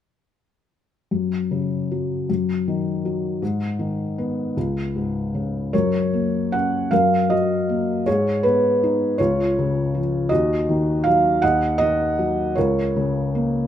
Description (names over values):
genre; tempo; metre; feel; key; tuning
classical, lyrical solo piano; 52 BPM (dotted quarters); 6/8; rubato; F# major; A4 = 439 Hz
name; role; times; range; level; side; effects
felt-muted upright piano; solo; 1.1-13.7 s; C#2 to F#5; -19 LUFS; equal; none
room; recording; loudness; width
light reverb; close, detailed microphones; -19 LUFS; side -10 dB against mid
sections
1.1-5.7 A section; 5.7-13.7 B section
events
none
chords
1.1 F#5; 2.3 D#m/F#; 3.4 G#m; 4.6 C#5; 5.7 F#; 6.9 D#m/F#; 8.1 G#m; 9.2 C#; 10.3 D#m; 12.6 A#m/C#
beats
| 1.11 2.29 | 3.42 4.56 | 5.73 6.91 | 8.07 9.19 | 10.31 11.42 | 12.56